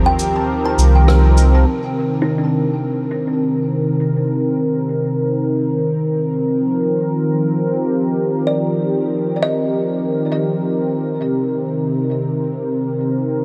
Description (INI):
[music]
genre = ambient dub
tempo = 101 BPM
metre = 4/4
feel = swing 58% on 16ths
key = C dorian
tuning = A4 = 441 Hz
[part]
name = warm analog pad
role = sustained chords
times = 0.0-13.4 s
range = C3 to Bb4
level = -19 LUFS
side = equal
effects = chorus
[part]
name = kalimba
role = arpeggios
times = 0.0-4.8, 8.5-11.8 s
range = D4 to A5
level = -27 LUFS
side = equal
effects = low-pass filter, tape echo
[part]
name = cabasa and rim click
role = drums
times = 0.2-1.5 s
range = none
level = -28 LUFS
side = equal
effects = dub echo
[part]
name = warm sub bass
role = bass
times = 0.8-1.6 s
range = C2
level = -12 LUFS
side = equal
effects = none
[sound]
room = light reverb, small room ambience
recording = dark, warm production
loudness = -18 LUFS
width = mono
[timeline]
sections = 0.0-1.7 A section; 1.7-13.4 B section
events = band accent 1.1; filter sweep on analog synth pad 1.7-13.4; filter sweep on kalimba 1.7-13.4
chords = 0.0 F9sus4; 1.7 Cm7; 6.4 F9sus4; 11.2 Cm7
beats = 0.48 1.08 | 1.67 2.27 2.86 3.45 | 4.05 4.64 5.24 5.83 | 6.42 7.02 7.61 8.21 | 8.80 9.39 9.99 10.58 | 11.18 11.77 12.36 12.96